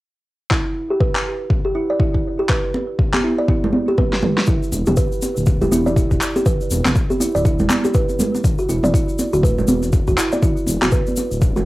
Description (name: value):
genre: afro house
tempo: 121 BPM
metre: 4/4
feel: swing 60% on 16ths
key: E minor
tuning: A4 = 440 Hz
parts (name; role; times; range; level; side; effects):
- kalimba; arpeggios; 0.5-11.7 s; E4 to D5; -21 LUFS; right 1 dB; sidechain pumping, low-pass filter, cassette tape, analog delay
- deep house drum kit; drums; 0.5-10.9 s; handclaps, snare drum, toms; -22 LUFS; left 1 dB; studio reverb, cassette tape
- electronic kick drum; drums; 0.5-11.5 s; none; -18 LUFS; equal; overdrive, studio reverb, cassette tape
- congas; percussion; 2.7-11.6 s; none; -21 LUFS; right 1 dB; none
- tube shaker; percussion; 4.5-11.6 s; none; -31 LUFS; left 3 dB; none
- dark detuned saw bass; bass; 4.7-11.6 s; D1 to E1; -22 LUFS; equal; sidechain pumping
room: light reverb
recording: home recording on cassette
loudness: -16 LUFS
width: side -18 dB against mid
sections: 0.5-4.5 A section; 4.5-11.7 B section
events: filter sweep on kalimba 0.5-4.5; drum fill 4.0-4.5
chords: 0.5 Em7; 4.5 E7(no3); 8.4 Bm (rootless)